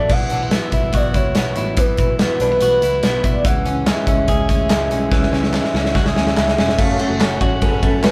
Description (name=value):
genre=jangly indie pop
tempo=144 BPM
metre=4/4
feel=straight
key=unclear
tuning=A4 = 440 Hz
part: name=warm velvety synth lead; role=melody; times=0.0-8.1 s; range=A4 to F#5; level=-23 LUFS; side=equal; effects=chorus
part: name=direct-recorded clean electric guitar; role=arpeggios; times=0.0-8.1 s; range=E3 to G#4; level=-26 LUFS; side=equal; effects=none
part: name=vintage muted picked electric bass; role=bass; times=0.0-8.1 s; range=E1 to F#2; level=-27 LUFS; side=equal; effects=none
part: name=picked steel-string acoustic guitar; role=accompaniment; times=0.1-8.1 s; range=F#2 to E4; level=-28 LUFS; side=equal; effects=none
part: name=big rock drum kit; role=drums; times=0.1-8.1 s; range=crash cymbal, hi-hat, kick drum, ride cymbal, snare drum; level=-20 LUFS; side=equal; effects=none
part: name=group handclap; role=percussion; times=3.9-8.1 s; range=none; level=-32 LUFS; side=equal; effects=none
part: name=combo organ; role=accompaniment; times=6.8-8.1 s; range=F#4 to C#5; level=-29 LUFS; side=equal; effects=none
room=light reverb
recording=band playing live in one room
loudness=-17 LUFS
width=mono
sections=0.1-6.8 A section; 6.8-8.1 B section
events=drum fill 5.1-6.8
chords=0.1 Bsus4; 3.4 C#m; 6.8 F#m